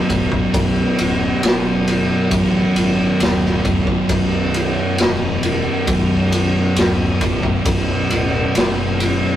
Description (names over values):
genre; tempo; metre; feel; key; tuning
stoner and doom metal; 67 BPM; 4/4; straight; B minor; A4 = 440 Hz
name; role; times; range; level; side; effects
thick fuzz guitar; riff; 0.0-9.4 s; B1 to B2; -22 LUFS; left 5 dB; distortion
thick fuzz guitar; riff; 0.0-9.4 s; B1 to B2; -20 LUFS; right 3 dB; distortion
fuzz fingered electric bass; bass; 0.1-9.2 s; B0 to A1; -25 LUFS; left 1 dB; overdrive
raw garage drum kit; drums; 0.1-9.2 s; kick drum, ride cymbal, snare drum; -18 LUFS; equal; none
room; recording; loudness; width
light reverb; rough rehearsal-room recording; -15 LUFS; side -11 dB against mid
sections
0.0-9.4 A section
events
none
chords
0.0 Bm